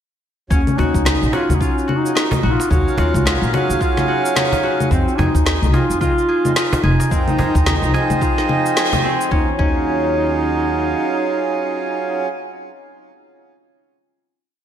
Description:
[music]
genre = organic downtempo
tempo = 109 BPM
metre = 4/4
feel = swing 59% on 16ths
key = Eb dorian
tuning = A4 = 439 Hz
[part]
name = mellow duduk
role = melody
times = 0.5-12.3 s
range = C4 to Gb4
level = -22 LUFS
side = right 1 dB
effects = vintage 12-bit sampler grit, digital delay
[part]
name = pedal harmonium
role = accompaniment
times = 0.5-12.3 s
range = F3 to F5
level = -22 LUFS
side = right 3 dB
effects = sidechain pumping, digital delay
[part]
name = concert harp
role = arpeggios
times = 0.5-12.5 s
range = C4 to Ab4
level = -23 LUFS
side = left 3 dB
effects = digital delay
[part]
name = upright bass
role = bass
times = 0.5-10.9 s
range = F1 to F2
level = -19 LUFS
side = equal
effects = none
[part]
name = electronic cabasa, congas and snare drum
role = drums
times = 0.5-9.3 s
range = none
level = -21 LUFS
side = left 1 dB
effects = overdrive, gated reverb
[part]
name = electronic kick drum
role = drums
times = 0.5-9.8 s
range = none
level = -21 LUFS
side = equal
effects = overdrive
[part]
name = cajon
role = percussion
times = 0.8-9.0 s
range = none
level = -26 LUFS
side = right 1 dB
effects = none
[sound]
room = moderate lush hall reverb, RT60 2.2 s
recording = bright 1980s-style digital production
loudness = -15 LUFS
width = side -9 dB against mid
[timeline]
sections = 0.5-9.3 groove; 9.3-11.5 final chord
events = band accent 8.8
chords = 0.5 Ebm11; 4.9 Fm7; 9.3 Ebm11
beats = | 0.51 1.06 1.61 2.16 | 2.71 3.26 3.81 4.36 | 4.91 5.46 6.01 6.56 | 7.11 7.66 8.21 8.76 | 9.31 9.86 10.41 10.96

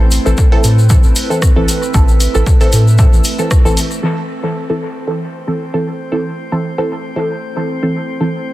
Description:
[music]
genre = dub techno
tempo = 115 BPM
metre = 4/4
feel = swing 55% on 16ths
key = A minor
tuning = A4 = 441 Hz
[part]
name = warbly tape-like pad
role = sustained chords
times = 0.0-8.5 s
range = A3 to B4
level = -26 LUFS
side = right 3 dB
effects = chorus, built-in reverb, sidechain pumping
[part]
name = filtered dub chord stab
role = stabs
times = 0.0-8.4 s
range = E3 to A4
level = -18 LUFS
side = right 1 dB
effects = chorus, phaser, cassette tape, sidechain pumping, dub echo
[part]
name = soft dub sub bass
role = bass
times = 0.0-3.7 s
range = A1 to A2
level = -12 LUFS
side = equal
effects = sidechain pumping
[part]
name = drifting glass-harmonics texture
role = texture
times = 0.0-8.5 s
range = C4 to E5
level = -27 LUFS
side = left 1 dB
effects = chorus, built-in reverb, sidechain pumping
[part]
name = punchy analog drum machine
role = drums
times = 0.1-3.9 s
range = hi-hat, rim click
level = -24 LUFS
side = right 1 dB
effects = low-pass filter on hats, soft clipping on snare, low-pass filter on snare, low-pass filter on room
[part]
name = tube shaker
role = percussion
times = 0.1-4.0 s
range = none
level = -23 LUFS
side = left 4 dB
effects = none
[part]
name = electronic kick drum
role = drums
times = 0.4-3.6 s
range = none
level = -11 LUFS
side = equal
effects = none
[sound]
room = digital ambience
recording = dense, heavily limited modern master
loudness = -11 LUFS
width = side -16 dB against mid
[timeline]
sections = 0.0-4.0 A section; 4.0-8.5 B section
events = band accent 3.5; filter sweep on synth stab 4.0-8.5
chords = 0.0 Am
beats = 0.38 0.90 1.42 | 1.95 2.47 2.99 3.51 | 4.03 4.55 5.08 5.60 | 6.12 6.64 7.16 7.68 | 8.21

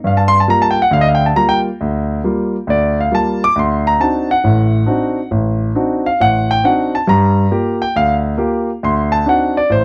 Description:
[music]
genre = solo jazz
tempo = 137 BPM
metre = 4/4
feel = swing 68% on 8ths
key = G minor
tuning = A4 = 440 Hz
[part]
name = warm grand piano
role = solo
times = 0.0-9.8 s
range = A1 to D6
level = -15 LUFS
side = equal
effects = none
[sound]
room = light reverb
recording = dry, close 1970s-style studio recording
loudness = -15 LUFS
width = mono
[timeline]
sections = 0.0-9.8 A section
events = grand piano solo 0.0-9.8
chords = 0.0 Gm7; 3.6 D7b9; 7.1 Gm7; 8.8 D7b9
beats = | 0.04 0.48 0.92 1.36 | 1.80 2.24 2.68 3.11 | 3.55 3.99 4.43 4.87 | 5.31 5.75 6.18 6.62 | 7.06 7.50 7.94 8.38 | 8.81 9.25 9.69

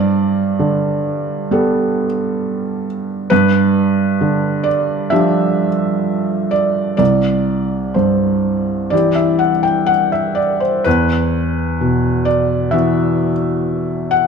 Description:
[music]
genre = neoclassical minimalist piano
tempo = 62-67 BPM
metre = 4/4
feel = rubato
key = unclear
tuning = A4 = 440 Hz
[part]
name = felt-muted upright piano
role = solo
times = 0.0-14.3 s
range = C2 to G5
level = -14 LUFS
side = right 1 dB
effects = none
[sound]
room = moderate recital hall reverb, RT60 1.8 s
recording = close, detailed microphones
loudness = -14 LUFS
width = side -6 dB against mid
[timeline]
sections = 0.0-14.3 A section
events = none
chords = 0.0 Gadd9; 3.3 G7; 7.0 C; 10.9 Esus2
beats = 0.60 1.50 2.41 | 3.31 4.21 5.12 6.05 | 7.00 7.96 8.92 9.89 | 10.86 11.80 12.74 13.67

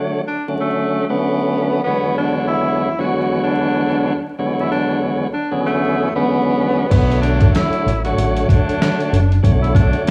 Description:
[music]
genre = hip hop, boom-bap hip-hop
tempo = 95 BPM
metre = 4/4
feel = swing 59% on 16ths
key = B dorian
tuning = A4 = 441 Hz
[part]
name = tonewheel organ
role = accompaniment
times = 0.0-10.1 s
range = E2 to C#5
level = -21 LUFS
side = equal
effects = overdrive, cassette tape, high-pass filter, low-pass filter
[part]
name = clear tenor saxophone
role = melody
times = 0.3-10.0 s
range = A3 to F#4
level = -23 LUFS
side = equal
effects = high-pass filter, low-pass filter, slapback echo
[part]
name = deep dub fingered electric bass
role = bass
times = 6.9-9.9 s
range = F#1 to B1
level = -18 LUFS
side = equal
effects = none
[part]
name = boom bap sampler-style drum kit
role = drums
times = 6.9-10.1 s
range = crash cymbal, hi-hat, kick drum, snare drum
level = -18 LUFS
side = equal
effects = none
[sound]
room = little or no reverb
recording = vinyl crackle, small room reverb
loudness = -17 LUFS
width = mono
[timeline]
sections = 0.0-6.9 A section; 6.9-10.1 B section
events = none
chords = 0.0 Bm7; 1.9 E13; 6.9 Bm7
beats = 0.60 1.23 | 1.86 2.49 3.12 3.75 | 4.38 5.02 5.65 6.28 | 6.91 7.54 8.18 8.81 | 9.44 10.07

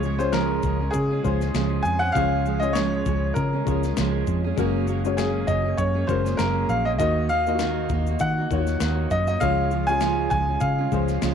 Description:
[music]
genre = acoustic pop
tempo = 99 BPM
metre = 4/4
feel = swing 55% on 16ths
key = Db major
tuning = A4 = 440 Hz
[part]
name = bright upright piano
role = melody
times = 0.0-11.3 s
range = Ab4 to Ab5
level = -26 LUFS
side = equal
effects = none
[part]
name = felt-muted upright piano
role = accompaniment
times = 0.0-11.3 s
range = Ab3 to Eb5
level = -29 LUFS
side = left 12 dB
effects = none
[part]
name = fingerpicked steel-string acoustic guitar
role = accompaniment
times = 0.0-11.3 s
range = Db3 to Ab4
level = -28 LUFS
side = right 13 dB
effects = none
[part]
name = vintage muted fingered electric bass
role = bass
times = 0.0-11.3 s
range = Gb1 to Eb3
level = -25 LUFS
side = equal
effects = none
[part]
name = breakbeat sampler-style drum kit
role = drums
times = 0.0-11.3 s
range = kick drum, shaker, snare drum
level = -32 LUFS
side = left 5 dB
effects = overdrive
[sound]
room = moderate spring reverb, RT60 2.5 s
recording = 1960s-style stereo with parts hard left and right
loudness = -20 LUFS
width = side -7 dB against mid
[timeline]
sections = 0.0-11.3 A section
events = none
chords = 0.0 Db; 4.6 Gbadd9; 7.0 Ebm; 9.4 Db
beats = 0.33 0.94 1.54 | 2.15 2.75 3.36 3.96 | 4.57 5.17 5.78 6.38 | 6.99 7.59 8.20 8.80 | 9.41 10.01 10.62 11.22

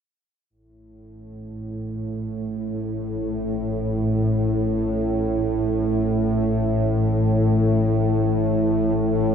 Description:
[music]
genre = ambient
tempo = free time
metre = none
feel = none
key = unclear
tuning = A4 = 439 Hz
[part]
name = bowed-like drone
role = drone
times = 1.3-9.3 s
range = A1 to A2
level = -20 LUFS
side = equal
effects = built-in reverb
[sound]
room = wet cathedral reverb, RT60 5.2 s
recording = worn, warbling old tape, cassette tape, warbly pitch drift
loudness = -20 LUFS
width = side -7 dB against mid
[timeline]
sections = 0.5-9.3 A section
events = filter sweep on synth drone 0.5-9.3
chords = none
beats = free time

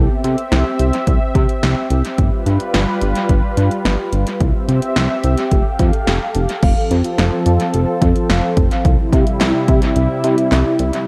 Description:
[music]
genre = synth-pop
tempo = 108 BPM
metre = 4/4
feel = straight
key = unclear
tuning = A4 = 440 Hz
[part]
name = lush unison pad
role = sustained chords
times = 0.0-11.1 s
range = C3 to F5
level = -22 LUFS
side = equal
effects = chorus
[part]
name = chorused synth bass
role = bass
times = 0.0-10.9 s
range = F1 to C3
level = -18 LUFS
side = equal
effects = none
[part]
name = punchy analog drum machine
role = drums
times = 0.2-11.1 s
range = crash cymbal, handclaps, hi-hat, kick drum, snare drum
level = -20 LUFS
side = equal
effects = dub echo
[part]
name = vibraphone with soft mallets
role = arpeggios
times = 6.6-10.9 s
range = E4 to F5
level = -24 LUFS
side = equal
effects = dub echo
[sound]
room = light reverb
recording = echo-heavy mix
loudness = -16 LUFS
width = mono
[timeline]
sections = 0.0-6.6 A section; 6.6-11.1 B section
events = none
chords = 0.0 C; 2.2 G7; 4.4 C; 5.5 Fadd9; 6.6 F; 8.9 C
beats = 0.52 1.07 1.63 | 2.18 2.74 3.29 3.85 | 4.41 4.96 5.52 6.07 | 6.63 7.18 7.74 8.29 | 8.85 9.41 9.96 10.52

